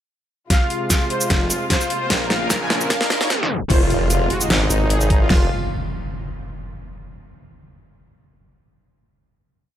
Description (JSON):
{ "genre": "heavy wobble dubstep", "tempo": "150 BPM", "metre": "4/4", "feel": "half-time", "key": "F minor", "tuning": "A4 = 441 Hz", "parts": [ { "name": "soft supersaw", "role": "melody", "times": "0.5-5.5 s", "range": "Eb4 to Ab5", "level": "-25 LUFS", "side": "equal", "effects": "dub echo" }, { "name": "dark studio string section", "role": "sustained chords", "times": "0.5-5.5 s", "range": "C3 to F4", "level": "-27 LUFS", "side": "left 2 dB", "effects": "sidechain pumping" }, { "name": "dubstep drum kit", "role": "drums", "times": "0.5-5.4 s", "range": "crash cymbal, kick drum, snare drum", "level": "-18 LUFS", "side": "equal", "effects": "overdrive" }, { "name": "dubstep drum kit", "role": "drums", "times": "0.5-5.2 s", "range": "crash cymbal, hi-hat, shaker, snare drum", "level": "-21 LUFS", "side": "equal", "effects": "overdrive" }, { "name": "riser and impact", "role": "sound effects", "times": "1.8-6.9 s", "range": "none", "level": "-28 LUFS", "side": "equal", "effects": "none" }, { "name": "snarling distorted saw bass", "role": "bass", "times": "1.3-2.9 s", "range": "F1 to Bb1", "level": "-26 LUFS", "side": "equal", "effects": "distortion, overdrive" }, { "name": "formant-sweep wobble bass", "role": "bass", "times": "3.7-5.5 s", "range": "F1 to Ab1", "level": "-19 LUFS", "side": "equal", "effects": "chorus, overdrive" } ], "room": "light reverb", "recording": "high-pass filter, tape stop", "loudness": "-16 LUFS", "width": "side -11 dB against mid", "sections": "0.5-3.7 build; 3.7-5.3 outro; 5.3-6.9 final chord", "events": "build-up 0.5-3.7; drum fill 0.5-3.7; riser 1.8-3.7; tape stop 3.3-3.7; impact 3.7-5.3", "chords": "0.5 Fm; 2.1 Bbm; 3.7 Fm; 4.5 Ab; 5.3 Fm" }